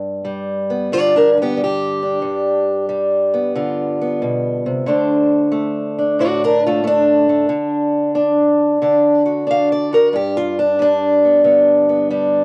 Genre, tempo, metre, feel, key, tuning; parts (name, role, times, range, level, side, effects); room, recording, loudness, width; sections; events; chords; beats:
acoustic country blues, solo or duo; 91 BPM; 4/4; swing 67% on 8ths; G mixolydian; A4 = 439 Hz
fingerpicked acoustic archtop guitar; solo; 0.0-12.4 s; G2 to F5; -16 LUFS; equal; cassette tape
moderate small room reverb, RT60 0.5 s; home recording on cassette; -16 LUFS; mono
0.0-12.4 A section
steel-string acoustic guitar solo 0.0-12.4
0.0 G7; 4.9 D7; 10.1 G
0.25 0.91 1.57 | 2.23 2.89 3.55 4.21 | 4.86 5.52 6.18 6.84 | 7.50 8.15 8.81 9.47 | 10.12 10.78 11.44 12.09